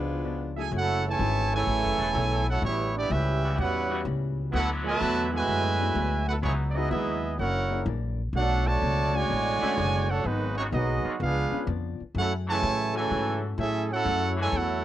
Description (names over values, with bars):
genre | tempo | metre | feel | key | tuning
jazz, big band swing | 126 BPM | 4/4 | swing 68% on 8ths | F# minor | A4 = 438 Hz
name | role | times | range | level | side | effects
warm saxophone section | melody | 0.0-0.5 s | G#3 to E#4 | -32 LUFS | left 3 dB | cassette tape
warm trombone section | second line | 0.0-14.8 s | G#2 to F#4 | -32 LUFS | right 8 dB | cassette tape
hollow-body jazz guitar | accompaniment | 0.0-14.8 s | F#2 to G#4 | -39 LUFS | left 10 dB | cassette tape
upright bass | bass | 0.0-14.8 s | E1 to A2 | -29 LUFS | left 1 dB | none
warm concert grand piano | accompaniment | 0.6-14.8 s | F#3 to B4 | -36 LUFS | left 10 dB | cassette tape
bright trumpet section | stabs | 0.6-0.7 s | G#4 to G#5 | -35 LUFS | right 7 dB | cassette tape
clear trumpet section | melody | 0.8-14.8 s | G#3 to A5 | -27 LUFS | right 2 dB | cassette tape
muted trombone section | sustained chords | 1.5-14.5 s | C#3 to A4 | -37 LUFS | left 2 dB | cassette tape
room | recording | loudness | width
light reverb | home recording on cassette, nothing above 10.4 kHz | -24 LUFS | side -12 dB against mid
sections
0.7-14.8 A section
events
none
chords
0.0 C#7b9; 0.7 F#m9; 2.6 A13; 4.5 D69; 6.4 C#m11; 7.4 F#7b13; 8.3 Bm11; 10.2 G#m7; 11.2 C#7b9; 12.2 F#m9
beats
0.24 | 0.72 1.20 1.67 2.15 | 2.62 3.10 3.58 4.05 | 4.53 5.01 5.48 5.96 | 6.44 6.91 7.39 7.87 | 8.34 8.82 9.29 9.77 | 10.25 10.72 11.20 11.68 | 12.15 12.63 13.10 13.58 | 14.05 14.53